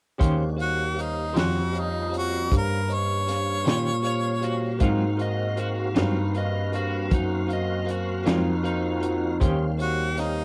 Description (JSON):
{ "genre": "slow blues", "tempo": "52 BPM (dotted quarters)", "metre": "12/8", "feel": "straight", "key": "unclear", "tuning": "A4 = 440 Hz", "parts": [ { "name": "bell-like tine electric piano", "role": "accompaniment", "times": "0.2-10.4 s", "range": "Gb4 to Gb5", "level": "-35 LUFS", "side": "equal", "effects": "none" }, { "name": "semi-hollow electric guitar", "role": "accompaniment", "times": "0.2-9.6 s", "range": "Ab2 to C5", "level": "-31 LUFS", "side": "equal", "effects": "tremolo" }, { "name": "tonewheel organ", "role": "sustained chords", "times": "0.2-10.4 s", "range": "G3 to F5", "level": "-40 LUFS", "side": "equal", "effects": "chorus vibrato, slow rotary speaker" }, { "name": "dark baby grand piano", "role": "bass", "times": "0.2-10.4 s", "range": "Eb2 to Bb2", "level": "-29 LUFS", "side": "equal", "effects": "none" }, { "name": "crunchy breakbeat drum kit", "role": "drums", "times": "0.2-10.4 s", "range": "hi-hat, kick drum, snare drum", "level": "-27 LUFS", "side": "equal", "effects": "none" }, { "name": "clear harmonica", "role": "melody", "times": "0.6-10.4 s", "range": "Eb4 to Db5", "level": "-30 LUFS", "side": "equal", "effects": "none" }, { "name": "overdriven slide guitar", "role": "second line", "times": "4.1-9.4 s", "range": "Eb4 to Eb5", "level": "-33 LUFS", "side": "equal", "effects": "slapback echo" } ], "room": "little or no reverb", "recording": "dry, close 1970s-style studio recording", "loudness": "-25 LUFS", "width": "mono", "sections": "0.2-10.4 A section", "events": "none", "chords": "0.2 Eb13; 4.8 Ab13; 9.4 Eb13" }